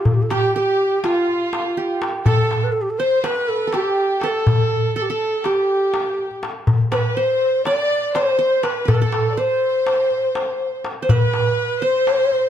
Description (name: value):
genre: Turkish makam ensemble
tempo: 245 BPM (eighths)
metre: 9/8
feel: straight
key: A makam ussak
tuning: A4 = 439 Hz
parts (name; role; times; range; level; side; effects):
- breathy mellow ney; melody; 0.0-12.5 s; F4 to D5; -19 LUFS; equal; none
- qanun; second line; 0.0-12.5 s; F4 to D5; -26 LUFS; right 4 dB; none
- darbuka; percussion; 0.1-12.4 s; none; -20 LUFS; left 2 dB; none
- rich chamber violin section; second line; 0.3-12.5 s; F4 to D5; -26 LUFS; equal; none
room: moderate studio ambience, RT60 0.5 s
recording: dark, warm production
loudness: -17 LUFS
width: side -10 dB against mid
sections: 0.0-12.5 A section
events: none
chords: none